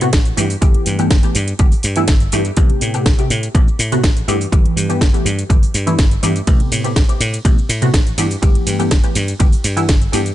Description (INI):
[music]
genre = filtered disco house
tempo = 123 BPM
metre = 4/4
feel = straight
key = unclear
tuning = A4 = 440 Hz
[part]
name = funky polysynth comp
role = accompaniment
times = 0.0-10.2 s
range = C3 to G4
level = -20 LUFS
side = equal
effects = chorus, phaser, sidechain pumping
[part]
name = dry thumbed slap bass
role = bass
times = 0.0-10.3 s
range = G1 to A2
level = -19 LUFS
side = equal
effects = tube saturation, sidechain pumping
[part]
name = house drum kit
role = drums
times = 0.0-10.3 s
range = hi-hat, ride cymbal, shaker, snare drum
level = -22 LUFS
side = equal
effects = sidechain pumping on perc, small room ambience, sidechain pumping on hats, sidechain pumping on cymbals
[part]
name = electronic kick drum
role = drums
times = 0.1-10.0 s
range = none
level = -13 LUFS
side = equal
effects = small room ambience
[sound]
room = digital ambience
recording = nothing above 10.8 kHz, faint mains hum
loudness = -12 LUFS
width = side -14 dB against mid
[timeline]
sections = 0.0-10.3 A section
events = none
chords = 0.4 G69; 2.6 Am9; 4.3 G69; 6.5 Am9; 8.2 G69